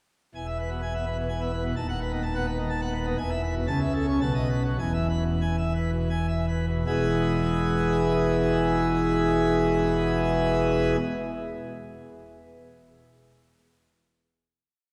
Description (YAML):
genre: classical, organ toccata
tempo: 73-128 BPM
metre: 3/4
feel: straight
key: E major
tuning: A4 = 441 Hz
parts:
  - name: pipe organ, plenum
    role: solo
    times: 0.3-11.0 s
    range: D#1 to A5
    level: -26 LUFS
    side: equal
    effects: none
room: wet church reverb, RT60 3.5 s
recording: recorded in a church or concert hall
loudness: -26 LUFS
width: mono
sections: 0.3-6.9 A section; 6.9-11.8 final chord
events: slowing down 2.5-6.9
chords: 0.3 E; 1.8 B7/D#; 3.2 E; 3.7 A/C#; 4.2 B7; 4.8 E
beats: | 0.35 0.82 1.30 | 1.77 2.24 2.71 | 3.19 3.68 4.21 | 4.78 5.41 6.09 | 6.87 7.68 8.49 | 9.30 10.12 10.94